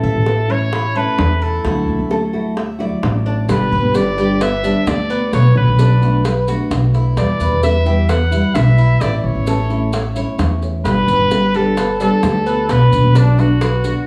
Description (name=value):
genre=latin, Cuban son and guajira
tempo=130 BPM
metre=4/4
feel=straight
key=unclear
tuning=A4 = 439 Hz
part: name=clear trumpet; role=melody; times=0.0-14.1 s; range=D4 to F#5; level=-23 LUFS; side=equal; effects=none
part: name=nylon-string guitar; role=accompaniment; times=0.0-14.1 s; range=B2 to G4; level=-23 LUFS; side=equal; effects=none
part: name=Cuban tres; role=arpeggios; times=0.0-14.1 s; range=B3 to E5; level=-26 LUFS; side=equal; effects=none
part: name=upright bass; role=bass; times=0.0-13.9 s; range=G1 to E2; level=-18 LUFS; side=equal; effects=none
part: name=bongos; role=percussion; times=0.3-14.1 s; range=none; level=-25 LUFS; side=equal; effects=none
part: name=maracas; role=percussion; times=3.5-14.1 s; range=none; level=-39 LUFS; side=equal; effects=none
room=moderate large studio reverb, RT60 0.9 s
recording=studio ambience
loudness=-15 LUFS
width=mono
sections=0.0-14.1 A section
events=none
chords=0.0 A; 1.6 Dadd9; 3.5 G; 5.3 Bm7; 7.2 Em; 9.0 A; 10.9 G; 12.7 Bm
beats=0.27 0.73 1.19 | 1.65 2.11 2.57 3.03 | 3.49 3.95 4.41 4.87 | 5.33 5.79 6.25 6.71 | 7.17 7.63 8.09 8.55 | 9.01 9.47 9.93 10.39 | 10.85 11.31 11.78 12.23 | 12.70 13.16 13.62